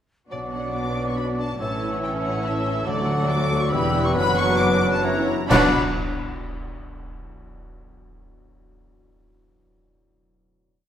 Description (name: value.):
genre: classical, dramatic, fast romantic movement for symphony orchestra.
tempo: 128-143 BPM.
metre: 3/4.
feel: rubato.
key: B minor.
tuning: A4 = 438 Hz.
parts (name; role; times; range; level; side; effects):
rich symphonic violin section; melody; 0.3-5.8 s; D5 to D6; -29 LUFS; left 3 dB; none.
mellow hollow concert flute; second line; 0.3-5.8 s; D6 to F#6; -28 LUFS; left 1 dB; none.
warm clarinet; second line; 0.3-5.7 s; A4 to D5; -31 LUFS; left 1 dB; none.
warm symphonic violin section; second line; 0.3-5.8 s; F#4 to D5; -32 LUFS; left 1 dB; none.
mellow bassoon; accompaniment; 0.3-5.7 s; E3 to G3; -30 LUFS; right 3 dB; none.
rich symphonic viola section; accompaniment; 0.3-5.8 s; F#3 to F#4; -30 LUFS; right 2 dB; none.
mellow French horn section; sustained chords; 0.3-5.7 s; A3 to G4; -30 LUFS; left 3 dB; none.
concert harp; arpeggios; 0.3-6.9 s; F#2 to D5; -30 LUFS; left 6 dB; none.
rich chamber double bass section; bass; 0.3-5.8 s; E1 to D2; -29 LUFS; right 2 dB; none.
rich symphonic cello section; bass; 0.3-5.8 s; D2 to B2; -29 LUFS; right 2 dB; none.
cymbal swell, clash cymbals and concert bass drum; percussion; 2.9-6.4 s; none; -30 LUFS; right 1 dB; none.
room: wet scoring stage reverb, RT60 1.7 s.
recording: none.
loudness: -19 LUFS.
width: side -10 dB against mid.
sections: 0.3-5.5 A section; 5.5-6.9 final chord.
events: band accent 5.5-6.0.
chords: 0.3 Bm; 1.6 A; 2.9 D; 3.7 Em; 4.2 Bm/F#; 5.0 F#7; 5.5 Bm.